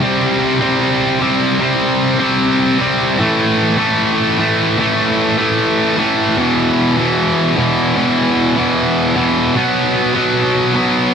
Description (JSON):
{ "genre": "metal", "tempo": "151 BPM", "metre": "4/4", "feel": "straight", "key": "unclear", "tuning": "A4 = 440 Hz", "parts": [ { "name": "heavy high-gain guitar", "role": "solo", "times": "0.0-11.1 s", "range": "E2 to C4", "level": "-12 LUFS", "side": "equal", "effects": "distortion" } ], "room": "little or no reverb", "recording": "dry, close 1970s-style studio recording", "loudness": "-12 LUFS", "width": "side -7 dB against mid", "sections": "0.0-11.1 A section", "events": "none", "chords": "0.0 C5; 3.2 A5; 6.4 E5; 9.6 B5" }